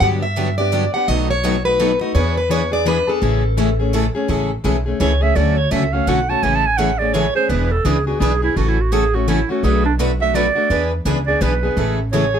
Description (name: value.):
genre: acoustic string swing (jazz manouche).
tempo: 168 BPM.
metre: 3/4.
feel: swing 61% on 8ths.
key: A major.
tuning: A4 = 440 Hz.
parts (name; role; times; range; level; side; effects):
picked plugged-in steel-string acoustic guitar; melody; 0.0-3.9 s; A4 to F#5; -20 LUFS; left 1 dB; none.
picked plugged-in steel-string acoustic guitar; accompaniment; 0.0-12.4 s; B2 to G#4; -21 LUFS; left 5 dB; none.
picked steel-string acoustic guitar; accompaniment; 0.0-12.2 s; B2 to B4; -25 LUFS; right 6 dB; none.
upright bass; bass; 0.0-12.4 s; E1 to G2; -20 LUFS; equal; none.
warm clarinet; second line; 5.0-12.4 s; D4 to A5; -19 LUFS; right 6 dB; none.
room: light reverb.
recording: close, detailed microphones.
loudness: -15 LUFS.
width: side -8 dB against mid.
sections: 0.0-4.3 A section; 4.3-12.4 B section.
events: clarinet solo 4.3-12.4.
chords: 0.0 Gmaj7; 1.1 B7; 2.2 E7; 3.2 Amaj7; 5.4 Dmaj7; 6.4 Amaj7; 7.5 E7; 8.6 A6; 9.6 Bm7; 10.7 E7; 11.8 Amaj7.